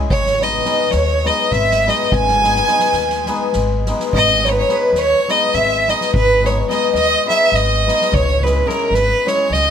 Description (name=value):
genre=balkan folk, Balkan wedding band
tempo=210 BPM (eighths)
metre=7/8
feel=straight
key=G# minor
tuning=A4 = 440 Hz
part: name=hammered dulcimer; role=accompaniment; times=0.0-9.7 s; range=G#3 to G#4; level=-21 LUFS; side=left 8 dB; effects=none
part: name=upright bass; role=bass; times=0.0-9.7 s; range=G#1 to D#2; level=-20 LUFS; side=right 1 dB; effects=none
part: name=rich fiddle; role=melody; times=0.1-9.7 s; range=A#4 to G#5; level=-16 LUFS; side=equal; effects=none
part: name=dark violin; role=second line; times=0.1-9.7 s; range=A#4 to G#5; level=-21 LUFS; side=right 5 dB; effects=tape echo
part: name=soft-mallet drum kit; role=percussion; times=0.1-9.6 s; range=kick drum, snare drum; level=-25 LUFS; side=right 1 dB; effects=none
room=light reverb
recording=close, detailed microphones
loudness=-13 LUFS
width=side -8 dB against mid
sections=0.0-4.1 A section; 4.1-9.7 B section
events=none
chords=0.1 G#m; 8.1 C#m